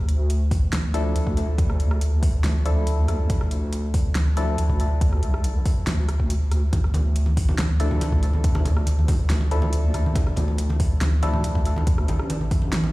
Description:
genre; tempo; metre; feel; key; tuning
deep dubstep; 140 BPM; 4/4; half-time; D minor; A4 = 439 Hz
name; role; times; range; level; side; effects
deep soft wobble bass; bass; 0.0-12.9 s; A1 to D2; -21 LUFS; equal; chorus, tube saturation
deep house drum kit; drums; 0.1-12.8 s; hi-hat, rim click, snare drum; -32 LUFS; equal; none
electronic kick drum; drums; 0.5-12.6 s; none; -22 LUFS; equal; none
percussive organ stab; stabs; 0.9-12.9 s; F3 to A4; -31 LUFS; left 2 dB; chorus, phaser, dub echo
congas; percussion; 6.7-12.9 s; none; -30 LUFS; right 1 dB; none
room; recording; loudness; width
digital ambience; played on a big sound system in a bare room, large studio reverb; -20 LUFS; side -19 dB against mid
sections
0.0-12.9 A section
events
none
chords
0.0 Dmadd9

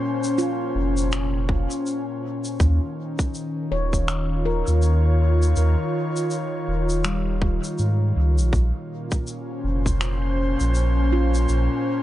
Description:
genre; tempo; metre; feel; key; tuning
ambient dub; 81 BPM; 4/4; swing 59% on 16ths; Bb dorian; A4 = 442 Hz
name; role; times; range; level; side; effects
airy breathy pad; sustained chords; 0.0-12.0 s; Bb2 to Db5; -25 LUFS; left 1 dB; chorus
shaker and finger snaps; drums; 0.2-11.7 s; none; -32 LUFS; left 1 dB; dub echo
handpan; arpeggios; 0.4-12.0 s; G3 to Db5; -32 LUFS; right 1 dB; dub echo
warm sub bass; bass; 0.8-11.7 s; Eb1 to Ab2; -20 LUFS; equal; none
electronic kick drum; drums; 1.5-10.0 s; none; -23 LUFS; equal; overdrive
room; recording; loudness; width
light reverb; nothing above 10.5 kHz; -20 LUFS; side -14 dB against mid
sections
0.0-12.0 A section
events
none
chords
0.0 Bbmadd9; 2.6 Eb7sus2; 8.5 Bbmadd9

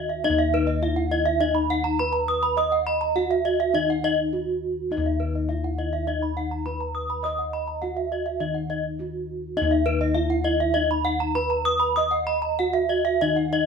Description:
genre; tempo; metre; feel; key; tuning
gamelan; 103 BPM; 4/4; straight; Eb pelog; A4 = 441 Hz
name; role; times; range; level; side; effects
gamelan-type bronze metallophone; melody; 0.0-13.7 s; Eb4 to Eb5; -26 LUFS; right 2 dB; none
gamelan-type bronze metallophone; arpeggios; 0.0-13.7 s; Cb5-20c to Eb6; -26 LUFS; left 4 dB; none
gamelan-type bossed gongs; bass; 0.0-13.7 s; Eb2 to Eb5; -28 LUFS; left 3 dB; none
gamelan-type bronze metallophone; arpeggios; 0.1-13.5 s; Eb5 to Cb6-20c; -29 LUFS; right 9 dB; none
room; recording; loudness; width
moderate stone room reverb, RT60 1.1 s; band playing live in one room; -22 LUFS; side -6 dB against mid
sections
0.0-13.7 A section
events
break 4.0-4.9, 8.7-9.6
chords
none

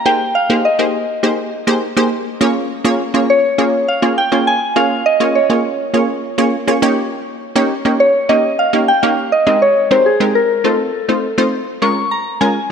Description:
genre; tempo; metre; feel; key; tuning
pop; 102 BPM; 4/4; straight; Bb dorian; A4 = 441 Hz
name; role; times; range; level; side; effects
soft synth bell; melody; 0.0-12.7 s; Ab4 to Db6; -14 LUFS; equal; chorus, phaser, digital delay
wavetable chord stab; accompaniment; 0.1-12.6 s; Ab3 to Db5; -16 LUFS; right 1 dB; none
room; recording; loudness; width
moderate lush hall reverb, RT60 2.8 s; dark, warm production; -12 LUFS; side -7 dB against mid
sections
0.0-11.8 A section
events
none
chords
0.1 Abmaj9; 2.4 Bbm7; 6.8 Eb7; 9.5 Abmaj9; 10.6 F7; 11.8 Bbm7

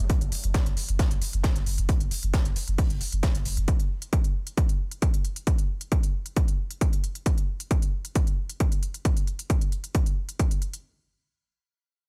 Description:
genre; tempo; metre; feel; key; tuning
driving peak-time techno; 134 BPM; 4/4; straight; unclear; A4 = 440 Hz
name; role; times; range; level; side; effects
saturated sub bass; bass; 0.0-3.7 s; F#1; -30 LUFS; equal; overdrive, sidechain pumping, low-pass filter
electronic hi-hat; drums; 0.1-10.8 s; none; -39 LUFS; equal; overdrive, studio reverb
electronic kick drum; drums; 0.1-10.5 s; none; -26 LUFS; equal; studio reverb
open jazz drum kit; drums; 0.1-3.6 s; hi-hat, snare drum; -43 LUFS; equal; high-pass filter on hats, studio reverb, high-pass filter on snare, high-pass filter on room
room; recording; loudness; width
digital ambience; none; -26 LUFS; mono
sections
0.0-10.8 A section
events
none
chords
none

